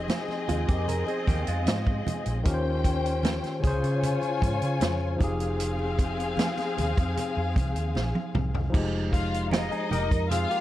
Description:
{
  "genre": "lush 1970s-style soul",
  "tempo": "76 BPM",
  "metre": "4/4",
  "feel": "straight",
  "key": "unclear",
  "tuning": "A4 = 440 Hz",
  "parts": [
    { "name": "warm studio string section", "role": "second line", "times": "0.0-10.6 s", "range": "C4 to Ab5", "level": "-31 LUFS", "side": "left 4 dB", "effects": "none" },
    { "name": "barky tine electric piano", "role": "accompaniment", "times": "0.0-10.6 s", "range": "Db3 to C5", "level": "-32 LUFS", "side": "left 1 dB", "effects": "none" },
    { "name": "vintage muted fingered electric bass", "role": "bass", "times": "0.0-10.4 s", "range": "F1 to Db3", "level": "-29 LUFS", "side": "equal", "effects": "none" },
    { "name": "vintage drum kit", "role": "drums", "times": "0.1-10.6 s", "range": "crash cymbal, hi-hat, kick drum, snare drum, toms", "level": "-28 LUFS", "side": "equal", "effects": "none" },
    { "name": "congas", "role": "percussion", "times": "0.1-10.5 s", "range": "none", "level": "-36 LUFS", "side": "right 4 dB", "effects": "none" },
    { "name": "direct-recorded clean electric guitar", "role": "riff", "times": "0.5-2.4, 9.5-10.6 s", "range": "Ab3 to Bb4", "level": "-33 LUFS", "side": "right 7 dB", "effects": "phaser" }
  ],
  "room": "studio reverb",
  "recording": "dark, warm production",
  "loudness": "-24 LUFS",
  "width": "side -14 dB against mid",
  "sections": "0.0-8.7 A section; 8.7-10.6 B section",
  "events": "drum fill 8.0-8.7",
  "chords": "0.0 Fm9; 2.5 Eb13; 3.6 Dbmaj7; 5.2 Fm9"
}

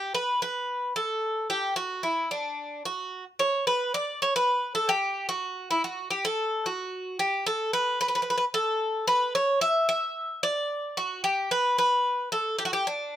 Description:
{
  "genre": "greek folk",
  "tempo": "222 BPM (eighths)",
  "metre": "7/8",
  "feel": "straight",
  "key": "D major",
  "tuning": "A4 = 440 Hz",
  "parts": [
    { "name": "Greek bouzouki", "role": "solo", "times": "0.0-13.2 s", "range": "D4 to E5", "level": "-25 LUFS", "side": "equal", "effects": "none" }
  ],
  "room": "light reverb",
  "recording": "close, detailed microphones",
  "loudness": "-25 LUFS",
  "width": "side -12 dB against mid",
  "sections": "0.0-13.2 A section",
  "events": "none",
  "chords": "none"
}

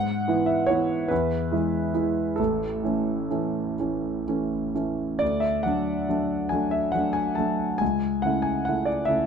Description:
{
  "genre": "classical, romantic nocturne for solo piano",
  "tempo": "41-49 BPM (dotted quarters)",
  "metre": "12/8",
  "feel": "rubato",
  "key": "A major",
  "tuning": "A4 = 440 Hz",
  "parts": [
    { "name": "warm concert grand piano", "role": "solo", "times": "0.0-9.3 s", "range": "A1 to A5", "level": "-23 LUFS", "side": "equal", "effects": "none" }
  ],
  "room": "light reverb",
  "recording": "dark, warm production",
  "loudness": "-23 LUFS",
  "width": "side -7 dB against mid",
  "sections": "0.0-9.3 A section",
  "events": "none",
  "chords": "0.0 E/G#; 1.1 E; 2.4 A; 5.2 D; 7.8 A/C#"
}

